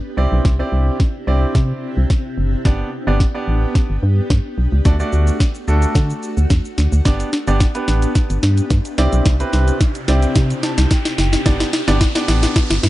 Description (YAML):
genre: dance-pop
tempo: 109 BPM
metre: 4/4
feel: straight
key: G major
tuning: A4 = 440 Hz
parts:
  - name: granular cloud pad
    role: sustained chords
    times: 0.0-12.9 s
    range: C3 to G4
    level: -27 LUFS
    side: left 2 dB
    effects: built-in reverb, sidechain pumping
  - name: bright concert grand piano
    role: accompaniment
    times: 0.2-12.8 s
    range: A3 to A5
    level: -23 LUFS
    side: right 2 dB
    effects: sidechain pumping
  - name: organ-like FM bass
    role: bass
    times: 0.2-12.9 s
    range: F#1 to D3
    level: -16 LUFS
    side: equal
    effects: sidechain pumping
  - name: smooth R&B drum kit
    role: drums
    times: 0.4-12.9 s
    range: hi-hat, kick drum, shaker, snare drum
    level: -16 LUFS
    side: equal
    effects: none
  - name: riser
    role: sound effects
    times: 8.3-12.9 s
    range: none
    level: -30 LUFS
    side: equal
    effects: none
room: digital ambience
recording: dark, warm production, nothing above 10.7 kHz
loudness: -14 LUFS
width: side -16 dB against mid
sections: 0.0-12.9 A section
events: build-up 0.0-12.9; drum fill 0.0-12.9; riser 8.3-12.9; grand piano fill 10.4-11.5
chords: 0.2 Cadd9; 2.7 G; 4.9 D; 7.1 G; 9.0 Cadd9; 11.5 G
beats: | 0.45 1.00 1.55 2.10 | 2.65 3.20 3.75 4.30 | 4.85 5.40 5.95 6.50 | 7.05 7.61 8.16 8.71 | 9.26 9.81 10.36 10.91 | 11.46 12.01 12.56